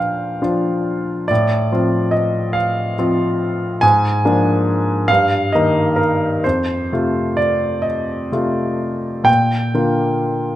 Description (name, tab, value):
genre	classical, romantic nocturne for solo piano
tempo	41-48 BPM (dotted quarters)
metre	12/8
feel	rubato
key	Bb major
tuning	A4 = 440 Hz
part	clear grand piano	solo	0.0-10.6 s	F2 to Ab5	-15 LUFS	equal	none
room	moderate recital hall reverb, RT60 1.6 s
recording	close, detailed microphones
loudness	-15 LUFS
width	side -13 dB against mid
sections	0.0-10.6 A section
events	none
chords	0.0 Bb; 1.3 F/A; 3.8 Bb7/Ab; 5.1 Eb/G; 6.4 F; 9.3 Bb